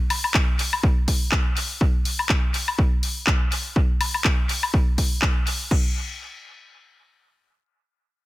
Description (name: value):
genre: filtered disco house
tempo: 123 BPM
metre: 4/4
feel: swing 56% on 16ths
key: none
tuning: none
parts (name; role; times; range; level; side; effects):
- house drum kit; drums; 0.1-5.8 s; crash cymbal, handclaps, hi-hat, woodblock; -24 LUFS; left 2 dB; sidechain pumping on hats, sidechain pumping on perc, sidechain pumping on cymbals, dub echo
- electronic kick drum; drums; 0.3-5.8 s; none; -21 LUFS; equal; none
room: light reverb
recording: echo-heavy mix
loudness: -20 LUFS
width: side -17 dB against mid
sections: 0.0-5.7 A section; 5.7-8.3 B section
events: none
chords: none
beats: 0.34 0.83 1.32 | 1.81 2.29 2.78 3.27 | 3.76 4.25 4.73 5.22 | 5.71